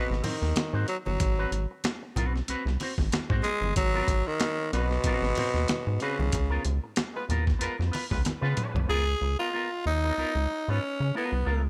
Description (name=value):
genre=funk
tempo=94 BPM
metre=4/4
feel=swing 56% on 16ths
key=unclear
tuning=A4 = 442 Hz
part: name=growling tenor saxophone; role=melody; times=0.0-11.7 s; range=B2 to Ab4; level=-32 LUFS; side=equal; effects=none
part: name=electric guitar with an envelope filter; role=accompaniment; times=0.0-11.6 s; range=Cb4 to C5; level=-38 LUFS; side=equal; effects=none
part: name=rubbery square bass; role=bass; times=0.1-11.7 s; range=G1 to Db3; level=-30 LUFS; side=equal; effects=none
part: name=breakbeat sampler-style drum kit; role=drums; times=0.1-8.9 s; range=hi-hat, kick drum, snare drum, toms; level=-33 LUFS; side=equal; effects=none
part: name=congas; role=percussion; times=0.2-8.9 s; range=none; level=-39 LUFS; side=equal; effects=none
part: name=warm horn section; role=second line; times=7.1-8.9 s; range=Ab3 to Cb5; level=-40 LUFS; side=equal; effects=tape echo
room=little or no reverb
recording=none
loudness=-28 LUFS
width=mono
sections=0.0-8.9 A section; 8.9-11.7 B section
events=band accent 6.3-8.9; drum fill 8.3-8.9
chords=0.0 Ab7#9; 6.3 Db13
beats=0.56 | 1.20 1.84 2.48 3.13 | 3.77 4.41 5.05 5.69 | 6.33 6.97 7.62 8.26 | 8.90 9.54 10.18 10.83 | 11.47